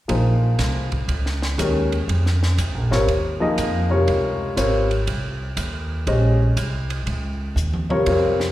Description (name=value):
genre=modal jazz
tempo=120 BPM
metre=4/4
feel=swing 66% on 8ths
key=Bb dorian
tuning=A4 = 440 Hz
part: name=warm upright piano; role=accompaniment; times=0.1-8.5 s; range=C3 to Eb5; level=-21 LUFS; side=left 2 dB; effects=slapback echo
part: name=upright bass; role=bass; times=0.1-8.5 s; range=Ab1 to F2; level=-21 LUFS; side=equal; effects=none
part: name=compact cocktail drum kit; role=drums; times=0.1-8.5 s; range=hi-hat, kick drum, ride cymbal, snare drum, toms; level=-29 LUFS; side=right 2 dB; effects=none
room=light reverb, small room ambience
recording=live gig heard through the venue's PA, recital hall reverb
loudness=-18 LUFS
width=side -14 dB against mid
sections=0.1-8.5 A section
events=drum fill 7.6-8.1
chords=0.1 Bbm11